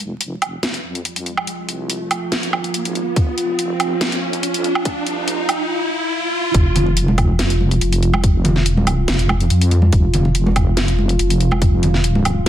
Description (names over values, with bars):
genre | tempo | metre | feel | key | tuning
deep dubstep | 142 BPM | 4/4 | half-time | F minor | A4 = 440 Hz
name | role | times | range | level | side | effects
deep dark ambient pad | sustained chords | 1.1-12.5 s | F4 | -24 LUFS | right 2 dB | chorus, built-in reverb
deep soft wobble bass | bass | 0.0-12.5 s | F1 to F2 | -18 LUFS | equal | chorus, high-pass filter
garage drum kit | drums | 0.0-12.5 s | hi-hat, snare drum, woodblock | -22 LUFS | right 1 dB | none
riser | sound effects | 1.2-6.5 s | none | -24 LUFS | left 1 dB | none
electronic kick drum | drums | 3.2-11.7 s | none | -16 LUFS | equal | none
congas | percussion | 6.8-12.2 s | none | -22 LUFS | right 1 dB | dub echo
room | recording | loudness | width
light reverb | dense, heavily limited modern master, vinyl crackle, high-pass filter | -15 LUFS | side -12 dB against mid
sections
0.0-6.5 A section; 6.5-12.5 B section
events
build-up 0.0-6.5; riser 1.2-6.5; drop 6.5-12.5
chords
0.0 F5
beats
0.21 0.63 1.05 | 1.48 1.90 2.32 2.74 | 3.17 3.59 4.01 4.43 | 4.86 5.28 5.70 6.12 | 6.55 6.97 7.39 7.81 | 8.24 8.66 9.08 9.50 | 9.93 10.35 10.77 11.19 | 11.62 12.04 12.46